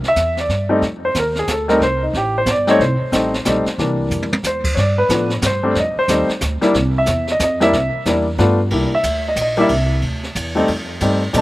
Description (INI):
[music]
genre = jazz piano trio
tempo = 182 BPM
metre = 3/4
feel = swing 62% on 8ths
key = C mixolydian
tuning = A4 = 440 Hz
[part]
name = upright bass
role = bass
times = 0.0-11.4 s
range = G1 to Bb2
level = -21 LUFS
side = right 1 dB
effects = none
[part]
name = jazz brush drum kit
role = drums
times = 0.0-11.4 s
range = brushed snare drum, crash cymbal, hi-hat, kick drum, ride cymbal, snare drum, toms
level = -23 LUFS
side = right 1 dB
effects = none
[part]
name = warm baby grand piano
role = melody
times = 0.1-11.4 s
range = E3 to A5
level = -16 LUFS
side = left 1 dB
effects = none
[sound]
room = little or no reverb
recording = recorded outdoors, with no room sound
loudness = -15 LUFS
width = side -17 dB against mid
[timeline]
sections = 0.0-8.7 A section; 8.7-11.4 A section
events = grand piano solo 0.0-11.4; drum fill 4.1-4.4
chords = 0.0 Cadd9 (rootless); 0.8 F9; 3.8 C9; 4.8 Gadd9; 5.8 F7sus2; 6.7 C; 7.4 Fsus2; 7.7 C9; 8.4 G9; 8.7 C9; 10.7 F9